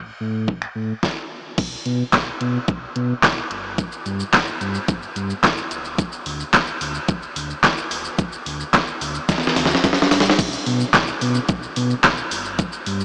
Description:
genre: dance-pop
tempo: 109 BPM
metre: 4/4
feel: straight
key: unclear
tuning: A4 = 440 Hz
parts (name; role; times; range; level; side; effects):
- sub bass with octave; bass; 0.0-13.0 s; D1 to B2; -27 LUFS; equal; sidechain pumping
- pop drum kit; drums; 0.5-13.0 s; crash cymbal, finger snaps, handclaps, hi-hat, kick drum, shaker, snare drum; -22 LUFS; equal; overdrive
room: wet huge ambient reverb, RT60 6.8 s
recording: dreamy mix soaked in reverb, small speaker sound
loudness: -21 LUFS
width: mono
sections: 0.0-1.6 A section; 1.6-10.4 B section; 10.4-13.0 C section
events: drum fill 9.3-10.4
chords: none

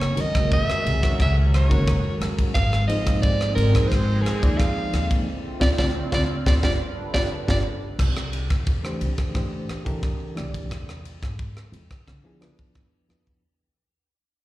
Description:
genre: electric jazz fusion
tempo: 88 BPM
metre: 4/4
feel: straight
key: unclear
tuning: A4 = 437 Hz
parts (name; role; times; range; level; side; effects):
- breathy soprano saxophone; melody; 0.0-7.6 s; Ab4 to F5; -27 LUFS; right 2 dB; slapback echo, tape echo
- sweeping resonant pad; sustained chords; 0.0-8.0 s; D3 to B4; -33 LUFS; equal; chorus, phaser
- upright bass; bass; 0.0-13.4 s; F#1 to D3; -24 LUFS; equal; none
- tight funk drum kit; drums; 0.0-13.4 s; crash cymbal, kick drum, ride cymbal, rim click, snare drum; -25 LUFS; equal; none
- reed electric piano; accompaniment; 0.2-13.4 s; Eb3 to D5; -29 LUFS; left 1 dB; harmonic tremolo, slapback echo
room: small room ambience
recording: live gig heard through the venue's PA, recital hall reverb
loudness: -20 LUFS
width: side -16 dB against mid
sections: 0.0-8.0 A section; 8.0-13.4 B section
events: band accent 5.3-8.0; fade-out 8.0-13.4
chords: 0.0 F#9; 2.6 Ab; 5.3 Dm9; 6.6 G9; 8.0 C13; 10.7 E7b9

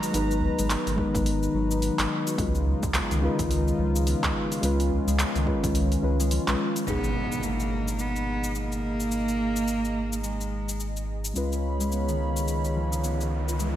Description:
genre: organic downtempo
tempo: 107 BPM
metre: 4/4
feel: swing 60% on 16ths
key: G# dorian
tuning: A4 = 436 Hz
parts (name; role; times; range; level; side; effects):
- muted felt-like synth keys; accompaniment; 0.0-13.8 s; B2 to B4; -31 LUFS; equal; chorus, sidechain pumping, low-pass filter, tape echo, slapback echo
- warm analog pad; sustained chords; 0.0-13.8 s; C#3 to B5; -34 LUFS; right 1 dB; chorus, sidechain pumping
- concert harp; arpeggios; 0.0-13.8 s; D#3 to F#4; -32 LUFS; left 4 dB; tape echo, slapback echo
- deep house drum kit; drums; 0.0-13.7 s; cabasa, handclaps, hi-hat; -32 LUFS; equal; overdrive, small room ambience, slapback echo
- warm sub bass; bass; 0.1-13.8 s; G#1 to C#2; -28 LUFS; equal; tube saturation, sidechain pumping
- udu; percussion; 0.4-5.0 s; none; -34 LUFS; left 1 dB; none
- electronic kick drum; drums; 1.0-5.7 s; none; -32 LUFS; equal; overdrive, small room ambience
- warm cello; melody; 6.9-11.0 s; G#3 to B3; -29 LUFS; right 2 dB; tape echo, slapback echo
- impact and riser; sound effects; 6.9-13.8 s; none; -36 LUFS; right 1 dB; none
room: moderate lush hall reverb, RT60 2.2 s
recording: big arena sound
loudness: -24 LUFS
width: side -12 dB against mid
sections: 0.0-6.9 A section; 6.9-13.8 B section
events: impact 6.9-9.1; riser 12.7-13.8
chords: 0.0 G#m; 2.4 C#7; 6.9 G#m; 11.4 C#7

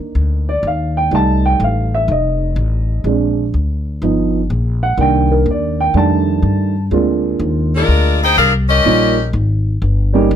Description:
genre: jazz, big band swing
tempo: 124 BPM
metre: 4/4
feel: swing 67% on 8ths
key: Bb major from 6.9 s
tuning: A4 = 439 Hz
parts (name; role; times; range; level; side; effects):
- dark upright piano; accompaniment; 0.0-10.3 s; Eb3 to A5; -16 LUFS; right 3 dB; none
- upright bass; bass; 0.0-10.4 s; F1 to G2; -16 LUFS; left 1 dB; none
- edgy saxophone section; melody; 7.7-9.3 s; Ab3 to G5; -13 LUFS; left 3 dB; none
room: light reverb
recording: close, detailed microphones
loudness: -13 LUFS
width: side -9 dB against mid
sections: 0.0-6.9 A section; 6.9-10.4 B section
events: upright piano solo 0.0-6.9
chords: 0.0 Cm7 (rootless); 1.1 F7; 3.1 Bb7; 4.0 G7alt; 5.0 Cm7; 6.0 F13; 6.9 Bb7; 8.9 Eb7

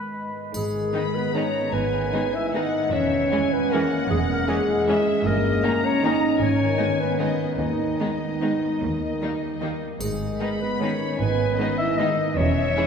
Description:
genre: classical, orchestral ballroom waltz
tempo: 139-168 BPM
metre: 3/4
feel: rubato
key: G# minor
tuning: A4 = 440 Hz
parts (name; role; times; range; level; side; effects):
- warm clarinet; second line; 0.0-12.9 s; G#3 to E5; -26 LUFS; equal; none
- concert harp; arpeggios; 0.0-12.9 s; E2 to D#5; -31 LUFS; left 2 dB; none
- mellow French horn section; sustained chords; 0.5-12.9 s; D#3 to E4; -26 LUFS; equal; none
- rich symphonic cello section; bass; 0.5-12.7 s; D#2 to G#2; -32 LUFS; right 3 dB; none
- rich symphonic double bass section; bass; 0.5-12.7 s; E1 to D#2; -32 LUFS; right 3 dB; none
- triangle; percussion; 0.5-1.3, 10.0-10.8 s; none; -40 LUFS; left 1 dB; none
- rich symphonic violin section; melody; 0.9-12.9 s; D#5 to B5; -31 LUFS; left 4 dB; none
- rich symphonic violin section; second line; 0.9-12.8 s; A#3 to G#4; -33 LUFS; left 2 dB; none
- clear symphonic viola section; accompaniment; 0.9-12.8 s; D#3 to A#3; -31 LUFS; right 2 dB; none
room: wet cathedral reverb, RT60 4.3 s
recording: recorded in a church or concert hall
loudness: -21 LUFS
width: side -6 dB against mid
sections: 0.5-12.9 A section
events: none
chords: 0.0 G#m; 2.9 C#m/E; 5.3 D#7/G; 6.4 G#m; 7.6 G#m/D#; 8.8 D#; 10.0 G#m

